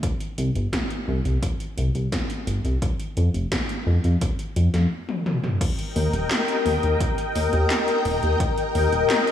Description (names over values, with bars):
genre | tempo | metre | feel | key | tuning
synthwave | 86 BPM | 4/4 | straight | unclear | A4 = 439 Hz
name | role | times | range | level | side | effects
80s electronic pad drums | drums | 0.0-9.3 s | crash cymbal, handclaps, hi-hat, snare drum, toms | -28 LUFS | equal | gated reverb on snare and toms
electronic kick drum | drums | 0.0-8.5 s | none | -26 LUFS | equal | none
chorused synth bass | bass | 0.4-9.1 s | Eb1 to F2 | -21 LUFS | equal | none
analog string pad | sustained chords | 5.6-9.3 s | Bb4 to G5 | -22 LUFS | left 3 dB | ensemble chorus, sidechain pumping
room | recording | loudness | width
moderate lush hall reverb, RT60 2.7 s | dreamy mix soaked in reverb, small room ambience | -21 LUFS | side -10 dB against mid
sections
0.0-5.6 A section; 5.6-9.3 B section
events
stop 4.9-5.6; drum fill 5.1-5.6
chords
0.0 C5; 2.8 N.C.; 5.6 Eb